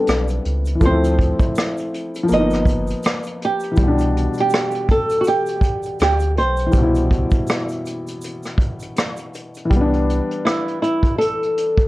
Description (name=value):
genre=lo-fi hip hop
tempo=81 BPM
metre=4/4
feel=swing 57% on 16ths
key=C major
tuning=A4 = 441 Hz
part: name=flamenco guitar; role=melody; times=0.0-11.9 s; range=E4 to D#5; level=-20 LUFS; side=right 1 dB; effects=low-pass filter, analog delay
part: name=warm upright piano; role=accompaniment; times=0.0-11.9 s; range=B2 to E4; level=-22 LUFS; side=left 2 dB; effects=low-pass filter
part: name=soft dub sub bass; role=bass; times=0.1-10.2 s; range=G1 to D2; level=-20 LUFS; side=equal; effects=transformer saturation
part: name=vintage brush drum kit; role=drums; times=0.1-11.9 s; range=hi-hat, kick drum, rim click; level=-20 LUFS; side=equal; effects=none
part: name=tube shaker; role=percussion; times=0.1-9.7 s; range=none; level=-44 LUFS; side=right 3 dB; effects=none
room=moderate studio reverb, RT60 0.5 s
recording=worn, warbling old tape, cassette tape, warbly pitch drift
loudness=-16 LUFS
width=side -18 dB against mid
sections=0.0-9.7 A section; 9.7-11.9 B section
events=none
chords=0.0 Am9; 0.8 Dm7; 2.3 G7alt; 3.8 Cmaj7